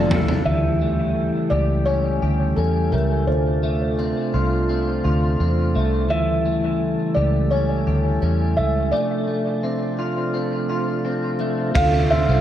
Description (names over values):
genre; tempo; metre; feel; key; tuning
dream pop; 85 BPM; 4/4; straight; D minor; A4 = 440 Hz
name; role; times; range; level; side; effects
mellow tonewheel organ; sustained chords; 0.0-12.4 s; C3 to A4; -25 LUFS; right 2 dB; slow rotary speaker
electric guitar at the edge of break-up; arpeggios; 0.0-12.4 s; E3 to A4; -25 LUFS; left 3 dB; ensemble chorus, dub echo
vintage muted fingered electric bass; bass; 0.0-12.4 s; Bb1 to E2; -21 LUFS; equal; none
raw garage drum kit; drums; 0.1-0.4, 11.8-11.9 s; kick drum, ride cymbal, toms; -24 LUFS; right 1 dB; none
felt-muted upright piano; melody; 0.5-12.4 s; A4 to F5; -25 LUFS; right 1 dB; dub echo
room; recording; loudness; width
moderate spring reverb, RT60 2.3 s; echo-heavy mix; -18 LUFS; side -11 dB against mid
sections
0.5-11.8 A section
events
drum fill 0.0-0.5; break 8.9-11.8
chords
0.5 A7; 3.3 Dm7; 6.1 A7; 8.9 Dm7